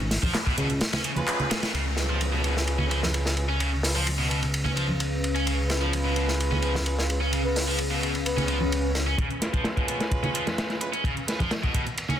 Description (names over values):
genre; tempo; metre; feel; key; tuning
breakbeat, breaks; 129 BPM; 4/4; straight; unclear; A4 = 440 Hz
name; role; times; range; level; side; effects
fat analog bass; bass; 0.0-9.2 s; G#1 to C#2; -27 LUFS; equal; none
house drum kit; drums; 0.0-1.7, 9.2-12.2 s; handclaps, hi-hat; -33 LUFS; right 1 dB; overdrive
crunchy breakbeat drum kit; drums; 0.1-12.2 s; hi-hat, kick drum, ride cymbal, snare drum; -28 LUFS; equal; high-pass filter on kick, low-pass filter on kick, high-pass filter on cymbals, low-pass filter on cymbals, high-pass filter on hats, low-pass filter on hats, high-pass filter on snare, low-pass filter on snare, high-pass filter on room, low-pass filter on room
high-gain distorted guitar; riff; 0.2-12.1 s; B2 to C#4; -31 LUFS; equal; distortion, low-pass filter, dub echo
congas; percussion; 0.2-12.2 s; none; -31 LUFS; right 2 dB; none
brilliant horn section; stabs; 1.2-11.4 s; G#3 to B4; -34 LUFS; right 2 dB; low-pass filter, dub echo
deep dark ambient pad; sustained chords; 4.1-12.2 s; C#3 to E#5; -34 LUFS; left 1 dB; chorus, built-in reverb, vintage 12-bit sampler grit, sidechain pumping
downlifter and swell; sound effects; 1.7-5.5, 8.4-9.2 s; none; -35 LUFS; left 3 dB; none
breathy flute-like synth lead; melody; 6.6-8.9 s; B4; -33 LUFS; left 1 dB; chorus, small speaker sound, dub echo
room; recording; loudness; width
light reverb, studio reverb; dense, heavily limited modern master; -23 LUFS; side -10 dB against mid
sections
0.0-1.7 A section; 1.7-9.2 B section; 9.2-12.2 C section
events
band accent 1.3; swell 8.4-9.2; build-up 9.2-12.2; filter sweep on drum 9.2-12.2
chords
0.0 C#7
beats
0.35 0.81 1.28 | 1.74 2.21 2.67 3.14 | 3.60 4.07 4.53 5.00 | 5.46 5.93 6.39 6.86 | 7.32 7.79 8.25 8.72 | 9.18 9.65 10.12 10.58 | 11.04 11.51 11.97